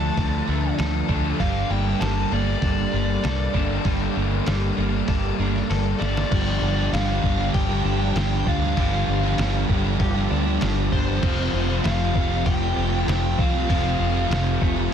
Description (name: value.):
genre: rock, shoegaze and dream pop.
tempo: 98 BPM.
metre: 4/4.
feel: straight.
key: unclear.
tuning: A4 = 439 Hz.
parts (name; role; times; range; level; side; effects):
dark smooth lead guitar; melody; 0.0-14.9 s; C5 to A5; -30 LUFS; equal; overdrive, tape echo.
clean electric guitar; arpeggios; 0.0-14.9 s; F3 to A4; -32 LUFS; left 5 dB; lush chorus, tape echo.
overdriven semi-hollow guitar; riff; 0.0-14.9 s; F2 to G4; -28 LUFS; right 11 dB; reverse reverb.
raw garage guitar; riff; 0.0-14.9 s; F2 to D4; -28 LUFS; right 1 dB; overdrive.
thick fuzz guitar; riff; 0.0-14.9 s; F2 to A4; -30 LUFS; left 11 dB; distortion, ensemble chorus.
vintage muted fingered electric bass; bass; 0.0-14.9 s; F1 to D2; -25 LUFS; equal; none.
lo-fi sampler-style drum kit; drums; 0.2-14.8 s; crash cymbal, hi-hat, kick drum, snare drum; -26 LUFS; equal; none.
room: digital ambience.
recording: dense, heavily limited modern master.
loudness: -20 LUFS.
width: side -8 dB against mid.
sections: 0.0-6.3 A section; 6.3-14.9 B section.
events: drum fill 5.7-6.3.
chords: 0.0 Dm; 1.4 Gmadd9; 6.3 G5; 11.2 Fadd9.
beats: 0.17 0.79 | 1.40 2.01 2.63 3.24 | 3.85 4.47 5.08 5.70 | 6.31 6.92 7.54 8.15 | 8.77 9.38 10.00 10.61 | 11.23 11.84 12.46 13.08 | 13.69 14.31 14.92.